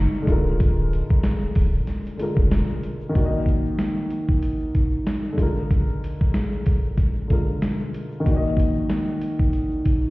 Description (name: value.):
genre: hip hop, boom-bap hip-hop.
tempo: 94 BPM.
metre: 4/4.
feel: swing 57% on 16ths.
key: Eb harmonic minor.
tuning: A4 = 440 Hz.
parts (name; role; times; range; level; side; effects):
dark upright piano; accompaniment; 0.0-10.1 s; D3 to Eb5; -25 LUFS; equal; cassette tape, high-pass filter, low-pass filter.
soft dub sub bass; bass; 0.0-2.6 s; D1 to F1; -22 LUFS; equal; none.
egg shaker; percussion; 0.1-10.1 s; none; -68 LUFS; right 6 dB; none.
dusty soul sampler-style drum kit; drums; 0.3-10.0 s; hi-hat, kick drum, snare drum; -21 LUFS; equal; none.
room: little or no reverb.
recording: heard muffled through a wall, stone room reverb, vinyl crackle, EQ.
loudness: -20 LUFS.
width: side -21 dB against mid.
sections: 0.0-3.1 A section; 3.1-10.1 B section.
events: none.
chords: 0.3 Bb7/D; 3.1 Ebm; 5.4 Bb7/D; 8.3 Ebm.